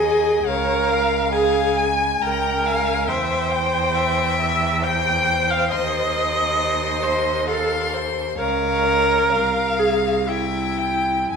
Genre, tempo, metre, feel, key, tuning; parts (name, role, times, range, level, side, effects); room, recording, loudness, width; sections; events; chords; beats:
classical, slow romantic movement for string quartet; 55-70 BPM; 3/4; rubato; F minor; A4 = 440 Hz
rich violin; melody; 0.0-11.4 s; F5 to C6; -25 LUFS; left 7 dB
rich violin; second line; 0.0-11.4 s; C5 to Ab5; -25 LUFS; left 3 dB
clear viola; accompaniment; 0.0-11.4 s; E4 to G5; -20 LUFS; right 1 dB
rich cello; bass; 0.0-11.4 s; C2 to F2; -26 LUFS; right 4 dB
wet recital hall reverb, RT60 1.3 s; minimal, uncompressed stereo recording; -18 LUFS; side -6 dB against mid
0.0-11.4 A section
0.5 Db; 3.1 C/E; 5.7 F7/Eb (rootless); 8.4 Bbm/Db; 9.3 Fm/C; 10.3 C
| 0.46 1.33 2.22 | 3.09 3.95 4.84 | 5.71 6.59 7.48 | 8.39 9.30 10.27 | 11.31